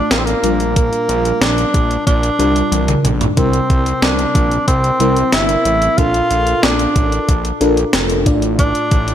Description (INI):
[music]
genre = 1980s-style pop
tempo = 92 BPM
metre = 4/4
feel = straight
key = C mixolydian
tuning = A4 = 440 Hz
[part]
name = breathy tenor saxophone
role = melody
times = 0.0-9.1 s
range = Bb3 to F4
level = -17 LUFS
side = equal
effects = digital delay
[part]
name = FM electric piano with soft pad layer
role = accompaniment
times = 0.0-9.1 s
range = A2 to D5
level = -19 LUFS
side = left 1 dB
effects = chorus
[part]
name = fat analog bass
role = bass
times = 0.1-9.1 s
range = F1 to C2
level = -19 LUFS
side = equal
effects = none
[part]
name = clean 12-bit digital drum machine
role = drums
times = 0.1-9.1 s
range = hi-hat, kick drum, snare drum, toms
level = -16 LUFS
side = equal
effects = gated reverb
[sound]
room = light reverb, digital ambience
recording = none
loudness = -12 LUFS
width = side -10 dB against mid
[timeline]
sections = 0.0-9.1 A section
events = drum fill 2.7-3.4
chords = 0.4 Gm7/Bb; 3.4 C7; 6.0 Bbmaj7; 8.3 Dm/A